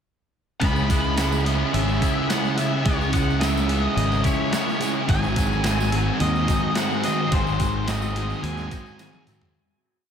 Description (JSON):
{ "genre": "rock, shoegaze and dream pop", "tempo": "107 BPM", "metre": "4/4", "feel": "straight", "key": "C# minor", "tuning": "A4 = 438 Hz", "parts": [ { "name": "octave-fuzz lead guitar", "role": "melody", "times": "0.6-9.2 s", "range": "B#4 to B5", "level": "-29 LUFS", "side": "equal", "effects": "distortion, analog delay" }, { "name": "twangy electric guitar", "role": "arpeggios", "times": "0.6-9.6 s", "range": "F#3 to E4", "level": "-33 LUFS", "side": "left 8 dB", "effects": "ensemble chorus, analog delay" }, { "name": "overdriven semi-hollow guitar", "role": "riff", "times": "0.6-9.6 s", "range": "G#2 to G#4", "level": "-27 LUFS", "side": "right 7 dB", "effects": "reverse reverb" }, { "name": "sludgy distorted guitar", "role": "riff", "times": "0.6-9.6 s", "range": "G#2 to C#4", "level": "-30 LUFS", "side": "right 1 dB", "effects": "overdrive" }, { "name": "thick fuzz guitar", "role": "riff", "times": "0.6-9.6 s", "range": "G#2 to C#4", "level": "-28 LUFS", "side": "left 7 dB", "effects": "distortion, wide subtle chorus" }, { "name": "growling fingered electric bass", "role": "bass", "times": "0.6-8.7 s", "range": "G#1 to D#2", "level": "-25 LUFS", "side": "equal", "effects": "overdrive" }, { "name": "clean 12-bit digital drum machine", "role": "drums", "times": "0.6-9.5 s", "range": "hi-hat, kick drum, snare drum, toms", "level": "-27 LUFS", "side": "equal", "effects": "none" }, { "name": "tambourine", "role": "percussion", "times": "0.8-9.4 s", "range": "none", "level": "-40 LUFS", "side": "right 9 dB", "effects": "none" } ], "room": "moderate lush hall reverb, RT60 1.9 s", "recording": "dreamy mix soaked in reverb", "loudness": "-20 LUFS", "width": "side -8 dB against mid", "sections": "0.6-9.6 A section", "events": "fade-out 7.3-9.6; drum fill 9.0-9.6", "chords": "0.6 C#m7; 5.1 G#7", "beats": "| 0.61 1.17 1.73 2.29 | 2.85 3.41 3.97 4.53 | 5.09 5.64 6.20 6.76 | 7.32 7.88 8.44 8.99" }